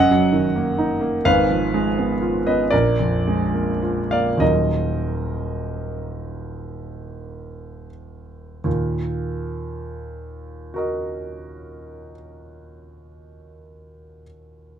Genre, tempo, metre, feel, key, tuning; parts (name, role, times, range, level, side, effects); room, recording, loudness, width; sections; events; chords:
classical, romantic nocturne for solo piano; 25-48 BPM (dotted quarters); 6/8; rubato; Eb minor; A4 = 441 Hz
warm concert grand piano; solo; 0.0-14.8 s; Eb1 to Gb5; -20 LUFS; right 1 dB
light reverb; close, detailed microphones; -19 LUFS; side -9 dB against mid
0.0-8.6 A section; 8.6-12.8 B section
slowing down 0.0-8.6
0.0 Ebm/Gb; 1.3 Fdim/Ab; 2.7 Bb7; 4.4 Ebm